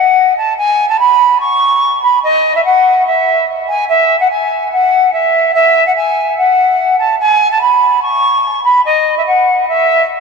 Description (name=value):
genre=hip hop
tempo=145 BPM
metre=4/4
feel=half-time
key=unclear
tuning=A4 = 440 Hz
part: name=silver concert flute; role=solo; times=0.0-10.0 s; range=D#5 to C#6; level=-9 LUFS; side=equal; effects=low-pass filter, diffuse ambient delay
room=wet huge ambient reverb, RT60 7.0 s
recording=dreamy mix soaked in reverb, faint mains hum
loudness=-9 LUFS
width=side -4 dB against mid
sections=0.0-10.2 A section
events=none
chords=none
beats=0.17 | 0.58 0.99 1.41 1.82 | 2.23 2.65 3.06 3.48 | 3.89 4.30 4.72 5.13 | 5.54 5.96 6.37 6.79 | 7.20 7.61 8.03 8.44 | 8.86 9.27 9.68